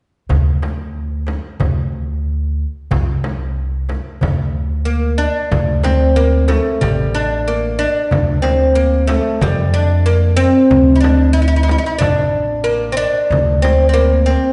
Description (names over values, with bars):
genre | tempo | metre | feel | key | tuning
Arabic maqam ensemble | 92 BPM | 4/4 | straight | D maqam bayati | A4 = 442 Hz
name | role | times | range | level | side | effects
upright bass | bass | 0.3-14.3 s | A1 to F2 | -19 LUFS | equal | none
darbuka | percussion | 0.3-14.5 s | none | -25 LUFS | equal | none
frame drum | percussion | 0.3-13.8 s | none | -25 LUFS | equal | none
oud | melody | 4.9-14.5 s | G3 to E4-50c | -17 LUFS | equal | none
room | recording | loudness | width
wet recital hall reverb, RT60 1.5 s | heard from further back in the room, nothing above 11.0 kHz | -15 LUFS | mono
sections
0.3-5.5 A section; 5.5-14.5 B section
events
none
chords
none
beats
| 0.30 0.95 1.61 2.26 | 2.91 3.56 4.21 4.87 | 5.52 6.17 6.82 7.47 | 8.12 8.77 9.42 10.07 | 10.72 11.37 12.02 12.67 | 13.32 13.97